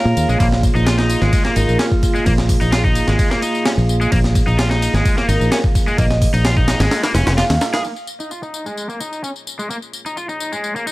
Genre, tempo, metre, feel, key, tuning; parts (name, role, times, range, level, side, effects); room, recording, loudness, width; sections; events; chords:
breakbeat, breaks; 129 BPM; 4/4; straight; Bb minor pentatonic; A4 = 439 Hz
vibraphone with medium hard mallets; melody; 0.0-2.3, 5.3-7.8 s; F4 to F5; -25 LUFS; right 1 dB; small speaker sound, vintage 12-bit sampler grit, ping-pong delay
dark analog pad; sustained chords; 0.0-10.9 s; Bb3 to F5; -24 LUFS; right 2 dB; chorus, sidechain pumping
cranked stack guitar; riff; 0.0-10.9 s; Ab3 to Bb4; -22 LUFS; left 1 dB; overdrive, low-pass filter, ping-pong delay
fingered electric bass; bass; 0.1-7.6 s; F1 to Bb2; -17 LUFS; equal
tambourine; drums; 0.1-10.9 s; -32 LUFS; left 4 dB
breakbeat sampler-style drum kit; drums; 0.2-7.8 s; hi-hat, kick drum, ride cymbal, snare drum; -18 LUFS; equal
light reverb; vinyl crackle; -14 LUFS; side -19 dB against mid
0.0-7.8 A section; 7.8-10.9 B section
filter sweep on overdriven electric guitar 7.8-10.9; filter sweep on analog synth pad 7.8-10.9
0.0 Bbm7